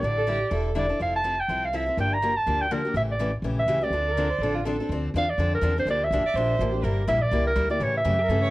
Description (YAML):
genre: acoustic string swing (jazz manouche)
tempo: 247 BPM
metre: 4/4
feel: swing 56% on 8ths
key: D minor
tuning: A4 = 439 Hz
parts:
  - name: clear clarinet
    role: melody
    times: 0.0-8.5 s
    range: Bb4 to Bb5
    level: -25 LUFS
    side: right 1 dB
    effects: none
  - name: picked steel-string acoustic guitar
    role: accompaniment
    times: 0.0-8.5 s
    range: C#3 to A4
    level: -29 LUFS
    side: left 3 dB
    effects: none
  - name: upright bass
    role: bass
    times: 0.0-8.5 s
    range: E1 to A2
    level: -28 LUFS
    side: equal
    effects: none
  - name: warm violin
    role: second line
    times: 0.2-0.7, 4.1-8.5 s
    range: F4 to D5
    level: -31 LUFS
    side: right 4 dB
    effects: none
room: light reverb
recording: worn, warbling old tape, cassette tape, warbly pitch drift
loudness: -22 LUFS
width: side -18 dB against mid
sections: 0.0-4.9 A section; 4.9-8.5 B section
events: none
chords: 0.0 A7sus4; 1.0 Fmaj9; 2.0 Gm7; 3.0 A7; 3.9 Dm7; 5.9 Gm7; 6.8 Em7b5/G; 7.8 A7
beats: | 0.03 0.28 0.52 0.76 | 1.00 1.25 1.49 1.74 | 1.98 2.22 2.47 2.71 | 2.95 3.20 3.44 3.68 | 3.92 4.17 4.41 4.66 | 4.90 5.14 5.38 5.63 | 5.87 6.11 6.36 6.60 | 6.84 7.08 7.33 7.57 | 7.81 8.06 8.30